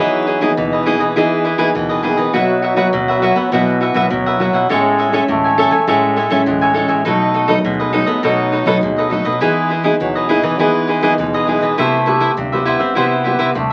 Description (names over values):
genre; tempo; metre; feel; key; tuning
samba and choro; 102 BPM; 4/4; straight; E major; A4 = 440 Hz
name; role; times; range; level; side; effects
clear trombone; second line; 0.0-13.7 s; D#3 to B3; -22 LUFS; equal; none
cavaquinho; accompaniment; 0.0-13.7 s; D#4 to G#5; -19 LUFS; equal; none
nylon-string guitar; accompaniment; 0.0-13.7 s; F#2 to G#4; -20 LUFS; equal; none
nylon-string guitar; bass; 0.0-13.7 s; A2 to C4; -25 LUFS; equal; none
egg shaker, pandeiro and surdo; percussion; 0.1-13.7 s; none; -37 LUFS; equal; none
room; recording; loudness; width
wet small room reverb, RT60 0.5 s; very old 78 rpm record, vinyl crackle; -15 LUFS; mono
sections
0.0-13.7 A section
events
none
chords
0.0 Emaj7; 2.3 Bsus4; 4.7 Amaj7; 7.1 B7; 9.4 Emaj7; 11.8 Cmaj7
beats
0.57 1.17 1.75 | 2.34 2.93 3.52 4.11 | 4.70 5.29 5.88 6.47 | 7.06 7.65 8.24 8.83 | 9.42 10.01 10.60 11.19 | 11.78 12.37 12.96 13.56